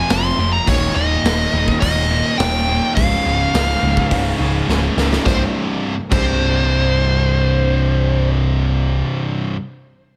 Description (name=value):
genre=hard rock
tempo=105 BPM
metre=4/4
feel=straight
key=C phrygian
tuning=A4 = 440 Hz
part: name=dark smooth lead guitar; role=melody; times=0.0-8.3 s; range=C5 to C6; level=-23 LUFS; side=equal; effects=overdrive
part: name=overdriven electric guitar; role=riff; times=0.0-9.6 s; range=C2 to F3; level=-25 LUFS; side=equal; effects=none
part: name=scooped high-gain guitar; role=riff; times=0.0-9.6 s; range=C2 to F3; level=-26 LUFS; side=equal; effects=distortion
part: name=sludgy distorted guitar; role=riff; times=0.0-9.6 s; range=C2 to F3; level=-29 LUFS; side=equal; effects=none
part: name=overdriven picked electric bass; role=bass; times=0.1-9.0 s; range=C1 to F1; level=-22 LUFS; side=equal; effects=none
part: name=raw garage drum kit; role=drums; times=0.1-6.3 s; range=crash cymbal, hi-hat, kick drum, snare drum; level=-24 LUFS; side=equal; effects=none
room=light reverb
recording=none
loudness=-17 LUFS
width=mono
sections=0.0-5.3 A section; 5.3-7.5 B section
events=drum fill 4.7-5.3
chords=0.0 F5; 0.7 Eb; 3.0 Db; 5.3 C5